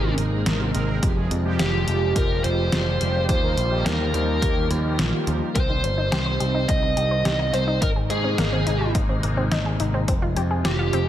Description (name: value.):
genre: synthwave.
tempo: 106 BPM.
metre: 4/4.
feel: straight.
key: unclear.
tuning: A4 = 439 Hz.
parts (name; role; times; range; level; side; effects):
bluesy overdriven lead guitar; melody; 0.0-11.1 s; G4 to Eb5; -26 LUFS; equal; distortion, tape echo.
phased analog pad; sustained chords; 0.0-11.1 s; C3 to F4; -29 LUFS; right 1 dB; phaser, chorus, sidechain pumping.
mellow synth brass; stabs; 0.0-5.5 s; F3 to Bb4; -30 LUFS; right 4 dB; chorus, phaser, tape echo.
modern bright picked electric bass; bass; 0.0-11.1 s; F1 to Ab2; -24 LUFS; equal; sidechain pumping.
detuned 8-bit digital drum machine; drums; 0.2-11.0 s; hi-hat, snare drum; -27 LUFS; equal; gated reverb.
electronic kick drum; drums; 1.0-10.2 s; none; -24 LUFS; equal; overdrive.
analog pluck; arpeggios; 5.6-11.0 s; Bb3 to C5; -29 LUFS; left 2 dB; chorus, tape echo.
room: moderate recital hall reverb, RT60 1.6 s.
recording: none.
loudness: -20 LUFS.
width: side -11 dB against mid.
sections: 0.0-11.1 A section.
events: none.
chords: 0.0 Abadd9; 1.0 Fmadd9; 3.3 Ebadd9; 5.6 Cm; 7.8 Abadd9; 10.1 Fmadd9.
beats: 0.46 | 1.03 1.59 2.16 2.72 | 3.29 3.86 4.42 4.99 | 5.55 6.12 6.69 7.25 | 7.82 8.38 8.95 9.52 | 10.08 10.65.